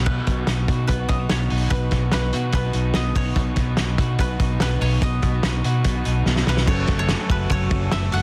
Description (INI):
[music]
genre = jangly indie pop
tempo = 145 BPM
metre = 4/4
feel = straight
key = unclear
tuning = A4 = 440 Hz
[part]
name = koto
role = melody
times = 0.0-8.2 s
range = A4 to F#5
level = -32 LUFS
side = equal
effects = tape echo
[part]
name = clean electric guitar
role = arpeggios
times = 0.0-8.2 s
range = F#2 to F#4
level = -30 LUFS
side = equal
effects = none
[part]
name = fingered electric bass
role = bass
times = 0.0-8.2 s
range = F#1 to B2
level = -25 LUFS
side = equal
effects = none
[part]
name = raw garage guitar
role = accompaniment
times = 0.1-8.2 s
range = F#2 to B4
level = -35 LUFS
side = equal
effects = overdrive
[part]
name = loose indie drum kit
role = drums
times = 0.1-8.2 s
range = crash cymbal, hi-hat, kick drum, ride cymbal, snare drum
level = -25 LUFS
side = equal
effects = none
[part]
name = dark upright piano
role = accompaniment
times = 6.7-8.2 s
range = C#4 to A4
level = -37 LUFS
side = equal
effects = none
[part]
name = group handclap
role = percussion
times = 7.1-8.0 s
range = none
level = -42 LUFS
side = equal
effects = none
[sound]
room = light reverb, studio reverb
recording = dense, heavily limited modern master, vinyl crackle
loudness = -21 LUFS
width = mono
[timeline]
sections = 0.0-6.7 A section; 6.7-8.2 B section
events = drum fill 6.3-6.7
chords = 0.0 B; 6.7 F#m